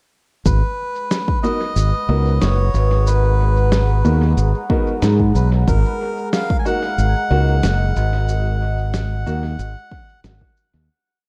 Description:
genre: ambient dub.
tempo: 92 BPM.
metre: 4/4.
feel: straight.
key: G# minor.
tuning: A4 = 440 Hz.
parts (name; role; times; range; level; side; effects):
melodica; melody; 0.5-10.2 s; A#4 to G#5; -28 LUFS; equal; dub echo.
warbly tape-like pad; sustained chords; 1.2-10.9 s; G#3 to A#5; -30 LUFS; equal; chorus, built-in reverb.
modern bright fingered electric bass; bass; 0.5-10.9 s; F#1 to G#2; -18 LUFS; equal; none.
electronic kick drum; drums; 0.5-10.5 s; none; -22 LUFS; equal; overdrive, studio reverb.
electronic shaker and snare drum; drums; 0.5-10.7 s; none; -27 LUFS; equal; studio reverb, dub echo.
clear upright piano; stabs; 1.4-9.4 s; A#3 to A#4; -28 LUFS; equal; dub echo.
room: little or no reverb.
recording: echo-heavy mix.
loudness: -18 LUFS.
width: mono.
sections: 0.5-10.9 groove.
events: fade-out 7.4-10.9.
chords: 0.5 G#m7; 5.7 D#m.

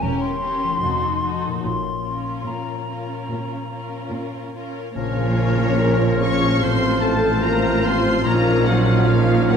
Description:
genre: classical.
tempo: 73 BPM.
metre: 4/4.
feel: rubato.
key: Bb minor.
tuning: A4 = 438 Hz.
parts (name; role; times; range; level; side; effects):
clear studio violin section; melody; 0.0-9.6 s; A4 to Db6; -28 LUFS; left 4 dB; none.
bright silver concert flute; second line; 0.0-9.6 s; Bb5 to F6; -28 LUFS; left 2 dB; none.
warm studio violin section; second line; 0.0-9.6 s; Db4 to Db5; -30 LUFS; left 2 dB; none.
rich chamber viola section; accompaniment; 0.0-9.6 s; Bb3 to Bb4; -28 LUFS; right 1 dB; none.
concert harp; arpeggios; 0.0-9.6 s; A2 to F5; -27 LUFS; left 8 dB; none.
rich chamber double bass section; bass; 0.0-9.6 s; E1 to Bb1; -25 LUFS; right 5 dB; none.
warm chamber cello section; bass; 0.0-9.6 s; E2 to Bb2; -27 LUFS; right 2 dB; none.
clear clarinet; second line; 5.0-9.6 s; F4; -30 LUFS; left 1 dB; none.
clear oboe; second line; 5.0-9.6 s; Bb4 to Db5; -32 LUFS; right 2 dB; none.
mellow bassoon; accompaniment; 5.0-9.6 s; F3; -30 LUFS; left 1 dB; none.
bright trombone section; sustained chords; 5.0-9.6 s; F3 to Db4; -29 LUFS; right 4 dB; none.
mellow French horn section; sustained chords; 5.0-9.6 s; Db3 to Db4; -26 LUFS; left 2 dB; none.
clear trumpet section; stabs; 5.0-9.6 s; F4; -30 LUFS; left 2 dB; none.
mellow tuba; bass; 5.0-9.6 s; A1 to Bb1; -26 LUFS; right 4 dB; none.
room: wet scoring stage reverb, RT60 1.8 s.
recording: dark, warm production.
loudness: -18 LUFS.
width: side -7 dB against mid.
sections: 0.0-5.0 A section; 5.0-9.6 B section.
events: none.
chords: 0.0 Edim7; 0.8 F7b9; 1.6 Bbm; 6.6 F/A; 8.3 Bbm.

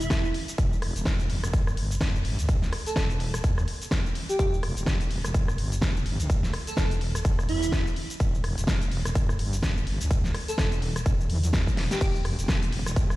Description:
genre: bass house.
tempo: 126 BPM.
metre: 4/4.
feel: swing 58% on 16ths.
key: E minor.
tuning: A4 = 437 Hz.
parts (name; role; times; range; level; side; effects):
airy dreamy lead; melody; 0.0-12.1 s; E4 to A4; -33 LUFS; right 1 dB; chorus, ping-pong delay.
wobble bass; bass; 0.0-13.2 s; E1 to E2; -29 LUFS; equal; chorus, tube saturation, sidechain pumping.
big-room dance drum kit; drums; 0.0-13.2 s; cabasa, crash cymbal, hi-hat, rim click, snare drum; -31 LUFS; equal; studio reverb.
electronic kick drum; drums; 0.1-13.1 s; none; -26 LUFS; equal; studio reverb.
room: little or no reverb.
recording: played on a big sound system in a bare room, stone room reverb.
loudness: -24 LUFS.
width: side -18 dB against mid.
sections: 0.0-13.2 A section.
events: drum fill 11.8.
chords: 0.0 Em.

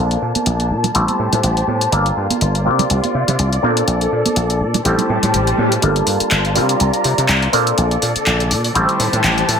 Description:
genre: filtered disco house.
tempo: 123 BPM.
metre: 4/4.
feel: swing 56% on 16ths.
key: unclear.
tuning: A4 = 441 Hz.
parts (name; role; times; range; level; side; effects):
auto-wah clav; accompaniment; 0.0-9.6 s; G3 to Bb4; -20 LUFS; equal; overdrive, phaser, low-pass filter.
warm studio violin section; sustained chords; 0.0-9.6 s; Bb3 to Bb5; -20 LUFS; equal; vintage 12-bit sampler grit, low-pass filter.
dry thumbed slap bass; bass; 0.0-9.6 s; G1 to C3; -19 LUFS; equal; low-pass filter.
punchy analog drum machine; drums; 0.1-9.6 s; handclaps, hi-hat; -20 LUFS; left 1 dB; high-pass filter on hats, high-pass filter on snare, high-pass filter on room.
tube shaker and congas; percussion; 0.2-5.8 s; none; -24 LUFS; right 6 dB; low-pass filter on perc.
swell and riser; sound effects; 5.1-9.6 s; none; -25 LUFS; left 1 dB; none.
room: light reverb.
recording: none.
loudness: -14 LUFS.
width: side -7 dB against mid.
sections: 0.0-5.8 A section; 5.8-9.6 B section.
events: filter sweep 0.0-5.8, 5.8-9.6; swell 5.1-5.8; build-up 5.8-9.6.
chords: 0.0 Bbmaj7; 0.9 Am7; 1.9 Gm9; 2.7 C9sus4; 3.6 Bbmaj7; 4.9 Am7; 5.8 Gm9; 6.6 C9sus4; 7.5 Bbmaj7; 8.8 Am7.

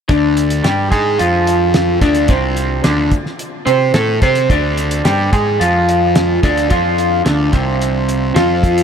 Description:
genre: psychedelic rock.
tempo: 109 BPM.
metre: 4/4.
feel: straight.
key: D minor.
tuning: A4 = 440 Hz.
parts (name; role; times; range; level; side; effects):
electric guitar through a small old amp; riff; 0.1-8.8 s; C3 to C5; -14 LUFS; equal; phaser.
fuzz picked electric bass; bass; 0.1-8.8 s; C2 to C3; -17 LUFS; equal; overdrive.
cloth-damped thuddy drum kit; drums; 0.1-8.8 s; hi-hat, kick drum, snare drum; -18 LUFS; equal; none.
room: moderate huge ambient reverb, RT60 7.4 s.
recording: dreamy mix soaked in reverb.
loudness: -12 LUFS.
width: side -7 dB against mid.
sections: 0.1-8.8 A section.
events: none.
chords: 0.1 Dm.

